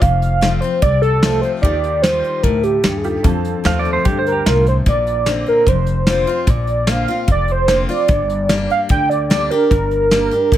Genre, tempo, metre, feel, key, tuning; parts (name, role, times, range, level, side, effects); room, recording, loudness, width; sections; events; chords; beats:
honky-tonk and classic country; 149 BPM; 4/4; straight; Bb major; A4 = 440 Hz
warm velvety synth lead; melody; 0.0-10.6 s; G4 to G5; -17 LUFS; right 1 dB; chorus
honky-tonk upright piano; accompaniment; 0.0-4.8 s; C4 to A5; -29 LUFS; right 4 dB
picked steel-string acoustic guitar; accompaniment; 0.0-10.6 s; F2 to G4; -23 LUFS; left 4 dB
upright bass; bass; 0.0-10.6 s; F1 to F2; -20 LUFS; equal
soft brush drum kit; drums; 0.0-10.6 s; hi-hat, kick drum, snare drum; -17 LUFS; equal
pedal steel guitar; second line; 3.7-4.7 s; F4 to F5; -20 LUFS; right 4 dB
little or no reverb; -13 LUFS; side -12 dB against mid
0.0-4.9 A section; 4.9-10.6 A section
0.0 F; 1.6 Ebadd9; 3.2 F; 4.9 Bbadd9; 8.1 Gm
| 0.02 0.42 0.83 1.23 | 1.63 2.04 2.44 2.84 | 3.25 3.65 4.05 4.46 | 4.86 5.27 5.67 6.07 | 6.48 6.88 7.29 7.69 | 8.10 8.50 8.90 9.31 | 9.71 10.12 10.52